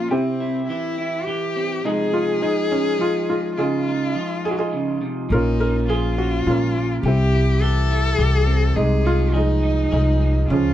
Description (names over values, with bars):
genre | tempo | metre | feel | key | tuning
acoustic folk-pop ballad | 104 BPM | 3/4 | straight | unclear | A4 = 440 Hz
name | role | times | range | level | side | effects
felt-muted upright piano | melody | 0.0-10.7 s | F3 to Bb4 | -23 LUFS | right 1 dB | none
warm cello | second line | 0.0-10.7 s | C4 to A4 | -25 LUFS | left 3 dB | none
electric guitar through a small old amp | accompaniment | 0.0-10.7 s | Ab2 to Ab4 | -25 LUFS | right 2 dB | none
upright bass | bass | 5.3-10.7 s | Bb1 to Db2 | -19 LUFS | equal | none
room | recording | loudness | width
little or no reverb | dark, warm production | -18 LUFS | side -12 dB against mid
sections
0.0-10.7 A section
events
none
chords
0.1 C; 1.8 Fm7/C; 3.6 Dbadd9; 5.3 Bbm; 7.0 C; 8.8 Fm7/C